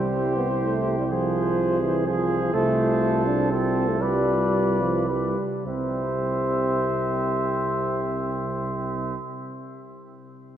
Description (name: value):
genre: classical, brass quintet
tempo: 101-128 BPM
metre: 3/4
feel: rubato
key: C major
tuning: A4 = 438 Hz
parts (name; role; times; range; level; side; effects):
- mellow cornet; melody; 0.0-9.2 s; C5 to E5; -31 LUFS; left 6 dB; none
- warm trumpet; second line; 0.0-9.2 s; G4 to C5; -29 LUFS; right 3 dB; none
- clear trombone; accompaniment; 0.0-9.2 s; E3 to D4; -27 LUFS; right 2 dB; none
- warm French horn; accompaniment; 0.0-9.2 s; E4 to G4; -31 LUFS; left 3 dB; none
- mellow tuba; bass; 0.0-9.2 s; C2; -28 LUFS; right 3 dB; none
room: wet cathedral reverb, RT60 6.0 s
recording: worn, warbling old tape, cassette tape, warbly pitch drift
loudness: -22 LUFS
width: side -10 dB against mid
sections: 0.0-5.7 A section; 5.7-9.0 B section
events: slowing down 1.8-5.7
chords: 0.0 C; 1.1 Fm/C; 2.5 F/C; 4.0 G7/C; 5.7 C